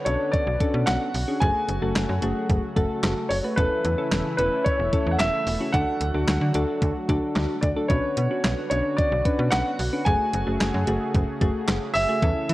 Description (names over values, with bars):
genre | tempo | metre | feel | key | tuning
synth-pop | 111 BPM | 4/4 | straight | unclear | A4 = 441 Hz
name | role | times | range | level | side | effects
warm grand piano | melody | 0.0-12.5 s | B4 to G#5 | -26 LUFS | equal | none
lush unison pad | sustained chords | 0.0-12.5 s | C#3 to G#4 | -32 LUFS | right 1 dB | chorus
soft electric-piano-like synth keys | accompaniment | 0.1-12.5 s | A3 to C#5 | -28 LUFS | left 1 dB | chorus
slap-like FM bass | bass | 0.1-12.5 s | E1 to E3 | -26 LUFS | equal | none
clean 12-bit digital drum machine | drums | 0.1-12.5 s | handclaps, hi-hat, kick drum, snare drum | -26 LUFS | equal | none
room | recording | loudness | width
light reverb | worn, warbling old tape, cassette tape, warbly pitch drift | -21 LUFS | side -17 dB against mid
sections
0.0-12.5 A section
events
none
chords
0.0 Bmadd9; 1.4 F#madd9; 3.6 A/E; 5.7 D; 7.9 Bmadd9; 10.1 F#madd9